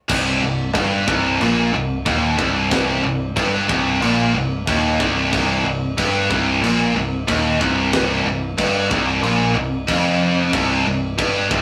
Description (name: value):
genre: heavy metal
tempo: 92 BPM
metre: 4/4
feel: straight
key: C minor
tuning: A4 = 439 Hz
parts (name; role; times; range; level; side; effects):
- heavy high-gain guitar; riff; 0.1-11.6 s; C2 to Bb2; -23 LUFS; equal; distortion
- scooped high-gain guitar; riff; 0.1-11.6 s; C2 to Bb2; -22 LUFS; equal; distortion
- growling picked electric bass; bass; 0.1-11.6 s; C1 to Bb1; -28 LUFS; equal; overdrive
- tight metal drum kit; drums; 0.1-11.6 s; crash cymbal, kick drum, snare drum; -28 LUFS; equal; none
room: moderate studio reverb, RT60 0.5 s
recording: rough rehearsal-room recording, tube saturation, small room ambience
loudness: -19 LUFS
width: mono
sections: 0.1-11.6 A section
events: half time 0.1-11.6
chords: 0.1 Cm